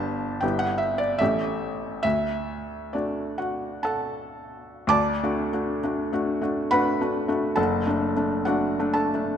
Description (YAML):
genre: classical, romantic nocturne for solo piano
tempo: 53-81 BPM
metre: 3/4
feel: rubato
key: D major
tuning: A4 = 439 Hz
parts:
  - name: felt-muted upright piano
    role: solo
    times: 0.0-9.4 s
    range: F#1 to D6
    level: -23 LUFS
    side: equal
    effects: none
room: wet concert hall reverb, RT60 1.9 s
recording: none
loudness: -23 LUFS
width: side -8 dB against mid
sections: 0.0-4.9 A section; 4.9-9.4 B section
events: none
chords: 0.4 Em/G; 1.2 A7; 2.0 D; 7.6 D/F#